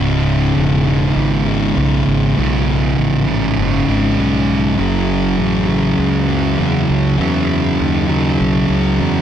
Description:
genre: metal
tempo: 100 BPM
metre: 4/4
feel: straight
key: unclear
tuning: A4 = 440 Hz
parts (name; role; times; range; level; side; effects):
- mellow tonewheel organ; sustained chords; 0.0-9.2 s; C#3 to G#4; -28 LUFS; left 3 dB; none
- thick fuzz guitar; riff; 0.0-9.2 s; C#2 to F#3; -19 LUFS; left 10 dB; distortion
- thick fuzz guitar; riff; 0.0-9.2 s; C#2 to F#3; -16 LUFS; right 6 dB; distortion
- fuzz fingered electric bass; bass; 0.0-9.2 s; C#1 to E2; -19 LUFS; equal; overdrive
room: little or no reverb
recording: dry, close 1970s-style studio recording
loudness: -13 LUFS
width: side -9 dB against mid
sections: 0.0-9.2 A section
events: none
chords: 0.0 C#5; 4.8 F#m

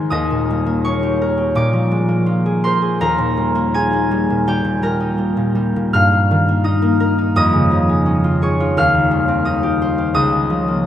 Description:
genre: classical, solo harp piece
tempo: 84 BPM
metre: 4/4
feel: rubato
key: unclear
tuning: A4 = 441 Hz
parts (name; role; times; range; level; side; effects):
- concert harp; solo; 0.0-10.9 s; Db2 to F6; -14 LUFS; equal; none
room: wet cathedral reverb, RT60 6.1 s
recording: in a vast, echoing space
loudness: -14 LUFS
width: side -10 dB against mid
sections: 0.0-10.9 A section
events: none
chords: 0.1 Eb; 1.5 Bb7; 3.0 Eb; 5.9 Eb/G; 7.3 Db/F; 8.8 Cm/Eb; 10.2 Bbm/Db

